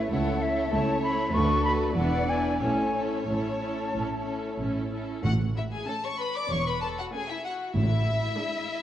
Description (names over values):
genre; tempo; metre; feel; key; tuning
quick classical-period movement for symphony orchestra; 94 BPM; 4/4; uneven beats, rubato; A major; A4 = 439 Hz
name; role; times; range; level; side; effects
rich chamber violin section; melody; 0.0-8.8 s; A4 to D6; -34 LUFS; left 3 dB; none
concert flute; second line; 0.0-4.5 s; E5 to C#6; -29 LUFS; left 1 dB; none
rich chamber violin section; second line; 0.0-8.8 s; E4 to D5; -35 LUFS; left 3 dB; none
rich studio viola section; accompaniment; 0.0-8.8 s; G#3 to F#4; -33 LUFS; right 2 dB; none
dark French horn section; sustained chords; 0.0-4.9 s; A3 to D4; -32 LUFS; left 2 dB; none
rich chamber cello section; bass; 0.1-8.2 s; C#2 to A2; -32 LUFS; right 2 dB; none
warm chamber double bass section; bass; 0.1-8.2 s; E1 to D2; -32 LUFS; right 2 dB; none
timpani; percussion; 5.2-8.6 s; A2; -32 LUFS; left 1 dB; none
room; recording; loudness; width
wet concert hall reverb, RT60 1.6 s; worn, warbling old tape, cassette tape, warbly pitch drift; -25 LUFS; side -11 dB against mid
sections
0.0-5.2 A section; 5.2-8.8 B section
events
none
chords
0.1 A/C#; 1.3 Bm7/D; 2.0 E7; 2.6 A; 7.8 E7/A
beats
| 0.11 0.72 1.34 1.97 | 2.62 3.27 3.93 4.59 | 5.25 5.88 6.51 7.14 | 7.76 8.38